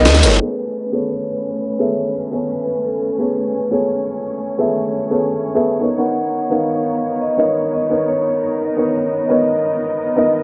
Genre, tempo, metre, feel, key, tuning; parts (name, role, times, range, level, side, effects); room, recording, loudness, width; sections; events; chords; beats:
liquid drum and bass; 172 BPM; 4/4; straight; A major; A4 = 440 Hz
felt-muted upright piano; accompaniment; 0.0-10.4 s; B3 to G#5; -21 LUFS; equal; digital delay
rich symphonic string section; sustained chords; 0.0-10.4 s; D#3 to G#5; -27 LUFS; equal; low-pass filter
breakbeat sampler-style drum kit; drums; 0.1-0.5 s; crash cymbal, hi-hat, snare drum, tambourine; -18 LUFS; equal; low-pass filter on hats, low-pass filter on perc, low-pass filter on snare, low-pass filter on cymbals, low-pass filter on room
vibraphone with medium hard mallets; melody; 0.4-10.3 s; A4 to F#5; -24 LUFS; equal; tape echo
moderate recital hall reverb, RT60 1.4 s, studio reverb; low-pass filter, nothing above 10.6 kHz; -18 LUFS; mono
0.4-10.4 A section
band accent 0.1; filter sweep on string section 0.4-10.4; filter sweep 0.4-10.4
0.4 Amaj9; 5.8 Bmaj9
0.06 | 0.40 0.75 1.10 1.45 | 1.80 2.15 2.50 2.85 | 3.19 3.54 3.89 4.24 | 4.59 4.94 5.29 5.64 | 5.99 6.33 6.68 7.03 | 7.38 7.73 8.08 8.43 | 8.78 9.12 9.47 9.82 | 10.17